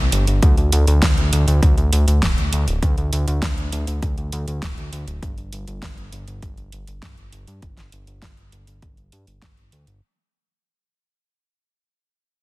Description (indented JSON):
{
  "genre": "synthwave",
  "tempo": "100 BPM",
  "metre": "4/4",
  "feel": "straight",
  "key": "unclear",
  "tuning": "A4 = 440 Hz",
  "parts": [
    { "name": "fat analog bass", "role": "bass", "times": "0.0-10.0 s", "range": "D1 to G2", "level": "-19 LUFS", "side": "equal", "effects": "tube saturation, sidechain pumping" },
    { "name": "pop drum kit", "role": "drums", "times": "0.1-10.0 s", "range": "hi-hat, snare drum", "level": "-25 LUFS", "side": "right 1 dB", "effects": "small room ambience" },
    { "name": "electronic kick drum", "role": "drums", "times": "0.4-9.5 s", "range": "none", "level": "-20 LUFS", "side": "equal", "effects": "small room ambience" }
  ],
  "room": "little or no reverb",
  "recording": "dense, heavily limited modern master",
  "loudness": "-16 LUFS",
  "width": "side -21 dB against mid",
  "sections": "0.0-10.0 A section",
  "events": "fade-out 0.0-10.0",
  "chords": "none"
}